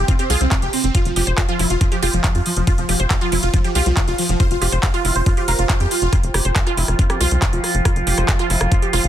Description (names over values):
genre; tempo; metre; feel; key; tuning
psychedelic trance; 139 BPM; 4/4; straight; unclear; A4 = 442 Hz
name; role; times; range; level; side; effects
dense compressed supersaw; melody; 0.0-6.1 s; F3 to C5; -22 LUFS; right 1 dB; phaser, sidechain pumping, dub echo
tight sequencer bass; bass; 0.0-9.1 s; F1 to F2; -19 LUFS; equal; none
warbly tape-like pad; texture; 1.7-9.1 s; F4 to G5; -32 LUFS; right 3 dB; chorus, built-in reverb, sidechain pumping
wide unison pluck; riff; 0.1-9.0 s; E4 to F5; -25 LUFS; moving between left 2 dB and right 4 dB; auto-pan, sidechain pumping, dub echo
drum and bass drum kit; drums; 0.1-9.1 s; handclaps, hi-hat, rim click; -23 LUFS; equal; none
electronic kick drum; drums; 0.1-8.8 s; none; -18 LUFS; equal; none
overtone-sweeping drone; sustained chords; 6.5-9.1 s; F3 to F4; -25 LUFS; right 2 dB; chorus, built-in reverb, sidechain pumping
vowel-sweep wobble bass; second line; 7.0-9.1 s; Ab3 to F4; -32 LUFS; left 1 dB; none
room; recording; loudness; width
little or no reverb; dense, heavily limited modern master; -15 LUFS; side -11 dB against mid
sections
0.0-9.1 A section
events
fade-in on ambient pad 0.0-9.1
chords
0.0 F5